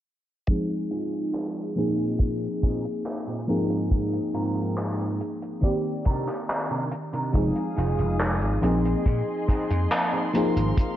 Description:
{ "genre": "vaporwave", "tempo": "70 BPM", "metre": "4/4", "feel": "straight", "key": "F dorian", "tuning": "A4 = 439 Hz", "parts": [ { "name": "FM electric piano with soft pad layer", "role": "accompaniment", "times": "0.5-11.0 s", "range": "Eb3 to D5", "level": "-27 LUFS", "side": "equal", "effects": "wide subtle chorus, tape echo" }, { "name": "cloth-damped thuddy drum kit", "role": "drums", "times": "0.5-10.9 s", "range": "handclaps, hi-hat", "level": "-31 LUFS", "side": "equal", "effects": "vintage 12-bit sampler grit, gated reverb" }, { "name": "kick drum", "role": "drums", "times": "0.5-10.9 s", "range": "none", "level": "-22 LUFS", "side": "equal", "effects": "vintage 12-bit sampler grit" }, { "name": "semi-hollow electric guitar", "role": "riff", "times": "0.9-11.0 s", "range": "Ab2 to Bb4", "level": "-31 LUFS", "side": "right 1 dB", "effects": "ensemble chorus, low-pass filter, tape echo" }, { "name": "vintage slap bass", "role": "bass", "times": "7.3-10.7 s", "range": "F1 to Bb2", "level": "-25 LUFS", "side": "equal", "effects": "tube saturation" }, { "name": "warm studio string section", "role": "sustained chords", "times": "7.4-11.0 s", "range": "Ab4 to Eb6", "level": "-35 LUFS", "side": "left 1 dB", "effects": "none" } ], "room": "moderate concert hall reverb, RT60 2.3 s", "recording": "cassette tape, low-pass filter", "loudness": "-23 LUFS", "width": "side -12 dB against mid", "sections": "0.5-11.0 A section", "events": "filter sweep on clean electric guitar 0.5-11.0; filter sweep 0.5-11.0", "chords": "0.5 Fm7; 1.8 Bb9sus4; 3.5 Ab69; 5.6 Cm9; 7.3 Fm7; 8.6 Bb9sus4; 10.3 Ab69", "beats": "| 0.49 1.34 2.20 3.06 | 3.92 4.77 5.63 6.49 | 7.34 8.20 9.06 9.92 | 10.77" }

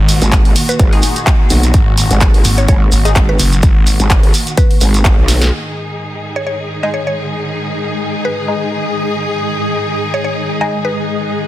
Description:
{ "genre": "bass house", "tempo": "127 BPM", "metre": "4/4", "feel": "swing 55% on 16ths", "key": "G# minor", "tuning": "A4 = 438 Hz", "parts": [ { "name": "warm studio string section", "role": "sustained chords", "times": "0.0-11.5 s", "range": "G#2 to G#4", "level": "-21 LUFS", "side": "equal", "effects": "sidechain pumping, low-pass filter" }, { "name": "phased detuned saw bass", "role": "bass", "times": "0.0-4.0 s", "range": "F#1 to G#1", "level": "-13 LUFS", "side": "equal", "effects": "phaser, overdrive, sidechain pumping" }, { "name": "big-room dance drum kit", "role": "drums", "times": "0.1-5.5 s", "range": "handclaps, hi-hat, snare drum", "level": "-18 LUFS", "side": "equal", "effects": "low-pass filter on hats, small room ambience, low-pass filter on snare" }, { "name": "shekere", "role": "percussion", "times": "0.1-5.5 s", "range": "none", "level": "-22 LUFS", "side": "right 3 dB", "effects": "none" }, { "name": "growl bass", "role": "bass", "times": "0.2-5.5 s", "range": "G#1 to B1", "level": "-13 LUFS", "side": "equal", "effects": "chorus, overdrive, sidechain pumping" }, { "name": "electronic kick drum", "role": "drums", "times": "0.3-5.2 s", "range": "none", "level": "-11 LUFS", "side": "equal", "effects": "small room ambience" }, { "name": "mallet-like synth pluck", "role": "melody", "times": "0.7-11.0 s", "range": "B4 to D#5", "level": "-22 LUFS", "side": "equal", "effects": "chorus, dub echo" }, { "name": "band-passed chord stab", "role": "stabs", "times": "0.9-3.1, 6.8-10.7 s", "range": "G#3 to G#4", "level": "-24 LUFS", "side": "left 4 dB", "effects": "phaser, analog chorus, cassette tape, sidechain pumping, dub echo" }, { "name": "granular cloud pad", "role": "texture", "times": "6.9-11.5 s", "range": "G#3 to F#6", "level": "-21 LUFS", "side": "left 2 dB", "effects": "built-in reverb, sidechain pumping" } ], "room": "light reverb, digital ambience", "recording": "dense, heavily limited modern master", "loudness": "-11 LUFS", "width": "side -14 dB against mid", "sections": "0.0-5.5 A section; 5.5-11.5 B section", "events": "drop 0.0-5.5; drum fill 5.3", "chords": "0.0 G#5", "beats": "0.32 0.80 1.27 | 1.74 2.21 2.68 3.16 | 3.63 4.10 4.57 5.05 | 5.52 5.99 6.46 6.94 | 7.41 7.88 8.35 8.83 | 9.30 9.77 10.24 10.72 | 11.19" }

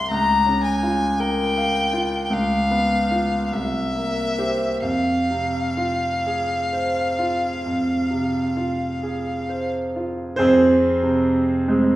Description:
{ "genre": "classical, romantic duo for violin and grand piano", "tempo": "42-55 BPM", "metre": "4/4", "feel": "rubato", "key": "F minor", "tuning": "A4 = 439 Hz", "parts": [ { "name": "rich violin", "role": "melody", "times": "0.0-9.7 s", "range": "E5 to Bb5", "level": "-23 LUFS", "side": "left 2 dB", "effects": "none" }, { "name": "bright concert grand piano", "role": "accompaniment", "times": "0.0-12.0 s", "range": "C2 to G5", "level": "-20 LUFS", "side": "right 1 dB", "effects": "none" } ], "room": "wet recital hall reverb, RT60 1.4 s", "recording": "heard from further back in the room", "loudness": "-19 LUFS", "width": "side -15 dB against mid", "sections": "0.0-10.4 A section; 10.4-12.0 A section", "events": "none", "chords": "0.1 Bbm/Db; 2.3 Db7; 3.5 C7; 4.8 Fm", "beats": "| 0.09 1.19 2.31 3.52 | 4.84 6.26 7.66 9.03 | 10.40 11.68" }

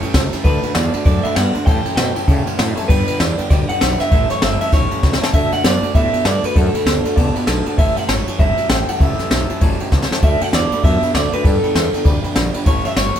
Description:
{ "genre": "rockabilly", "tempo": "196 BPM", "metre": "4/4", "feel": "swing 61% on 8ths", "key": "D major from 5.3 s", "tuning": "A4 = 439 Hz", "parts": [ { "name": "electric guitar through a small old amp", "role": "melody", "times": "0.0-13.2 s", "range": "A4 to G5", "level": "-21 LUFS", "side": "equal", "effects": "slapback echo" }, { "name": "picked steel-string acoustic guitar", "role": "accompaniment", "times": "0.0-13.2 s", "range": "A2 to B4", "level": "-28 LUFS", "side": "left 3 dB", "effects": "none" }, { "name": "electric guitar through a small old amp", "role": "riff", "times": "0.0-13.2 s", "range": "G2 to B3", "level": "-24 LUFS", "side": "right 4 dB", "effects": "none" }, { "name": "woody fretless electric bass", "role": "bass", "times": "0.0-13.2 s", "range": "G1 to C#3", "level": "-22 LUFS", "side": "equal", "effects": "none" }, { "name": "jazz brush drum kit", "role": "drums", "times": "0.0-13.2 s", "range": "kick drum, ride cymbal, snare drum", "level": "-16 LUFS", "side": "equal", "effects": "none" }, { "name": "dark upright piano", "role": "accompaniment", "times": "0.4-13.2 s", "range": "B4 to C6", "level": "-30 LUFS", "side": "left 6 dB", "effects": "none" } ], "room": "light reverb", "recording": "band playing live in one room", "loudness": "-14 LUFS", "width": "side -9 dB against mid", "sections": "0.0-5.3 A section; 5.3-13.2 B section", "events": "drum fill 5.0-5.3, 9.9-10.2", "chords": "0.4 D; 1.7 A7; 2.9 G; 4.1 A7; 5.3 D; 7.8 A7; 10.2 D; 11.4 G; 12.7 A7", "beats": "0.14 | 0.45 0.75 1.06 1.37 | 1.67 1.98 2.28 2.59 | 2.89 3.20 3.50 3.81 | 4.11 4.42 4.72 5.03 | 5.34 5.64 5.95 6.25 | 6.56 6.87 7.17 7.48 | 7.78 8.09 8.39 8.70 | 9.01 9.31 9.62 9.92 | 10.23 10.53 10.84 11.14 | 11.45 11.75 12.06 12.36 | 12.67 12.97" }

